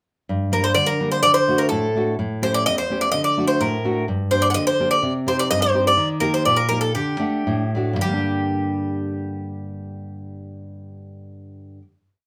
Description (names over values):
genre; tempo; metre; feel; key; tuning
greek folk, Greek bouzouki band; 102-127 BPM; 2/4; straight; G harmonic minor; A4 = 440 Hz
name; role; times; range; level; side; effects
nylon-string guitar; accompaniment; 0.3-11.9 s; E2 to F#5; -25 LUFS; equal; none
Greek bouzouki; melody; 0.5-11.8 s; G4 to F#5; -22 LUFS; equal; none
room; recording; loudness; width
wet small room ambience, RT60 0.5 s; none; -20 LUFS; mono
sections
0.3-8.0 A section; 8.0-10.4 final chord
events
slowing down 6.0-8.0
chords
0.3 Gm; 1.2 D; 2.2 A7; 3.1 D; 4.1 Gm; 5.0 Cm; 6.0 Eb; 6.9 D; 8.0 Gm